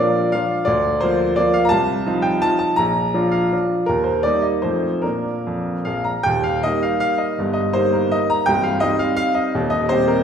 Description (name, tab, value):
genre	classical, romantic triple-time dance for piano with dotted rhythms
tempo	139-186 BPM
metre	3/4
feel	rubato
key	Bb major, Eb major from 6.3 s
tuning	A4 = 440 Hz
part	bright grand piano	solo	0.0-10.2 s	C1 to Bb5	-17 LUFS	equal	none
room	wet recital hall reverb, RT60 1.6 s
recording	recorded in a church or concert hall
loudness	-17 LUFS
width	side -7 dB against mid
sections	0.0-6.3 A section; 6.3-10.2 B section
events	none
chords	0.0 Bb; 0.7 Bb/D; 1.7 F7/C; 2.8 Bb; 3.9 Eb; 4.6 F7; 5.0 Bb; 6.3 Eb; 7.4 Eb/G; 8.5 Cm; 9.6 Cm/Eb